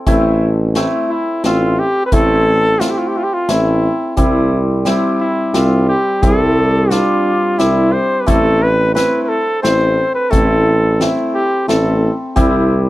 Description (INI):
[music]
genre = klezmer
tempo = 88 BPM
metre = 3/4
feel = straight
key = A minor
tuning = A4 = 440 Hz
[part]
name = hammered dulcimer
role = accompaniment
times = 0.1-12.9 s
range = G3 to E5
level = -17 LUFS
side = equal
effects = none
[part]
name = clear tuba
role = bass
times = 0.1-12.9 s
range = A1 to C2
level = -16 LUFS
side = equal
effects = none
[part]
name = street-band drum kit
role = drums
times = 0.1-12.5 s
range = hi-hat, kick drum, snare drum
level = -18 LUFS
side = equal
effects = none
[part]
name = warm cornet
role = melody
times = 1.1-12.2 s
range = E4 to C5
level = -16 LUFS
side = equal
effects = none
[sound]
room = little or no reverb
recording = dry, close 1970s-style studio recording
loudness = -12 LUFS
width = side -16 dB against mid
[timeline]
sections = 0.1-12.9 A section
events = none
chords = 0.1 Am; 4.2 C; 8.3 Am; 12.4 C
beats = | 0.07 0.75 1.44 | 2.12 2.80 3.49 | 4.17 4.86 5.54 | 6.23 6.91 7.60 | 8.28 8.96 9.65 | 10.33 11.01 11.69 | 12.37